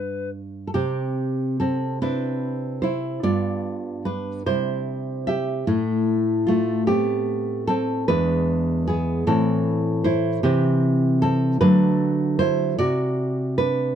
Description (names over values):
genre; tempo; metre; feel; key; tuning
classical; 50 BPM (dotted quarters); 6/8; uneven beats, rubato; C major; A4 = 442 Hz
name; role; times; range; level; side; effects
nylon-string guitar; accompaniment; 0.0-14.0 s; E2 to E5; -20 LUFS; right 1 dB; none
room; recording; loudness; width
light reverb; close, detailed microphones; -20 LUFS; side -9 dB against mid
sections
0.7-14.0 A section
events
none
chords
0.0 G; 0.7 C; 3.2 G7; 4.5 C; 5.7 Am; 8.1 E7; 9.3 Am; 10.4 C; 11.6 D; 12.8 D7/C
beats
| 0.75 2.02 | 3.23 4.46 | 5.67 6.88 | 8.09 9.28 | 10.44 11.62 | 12.79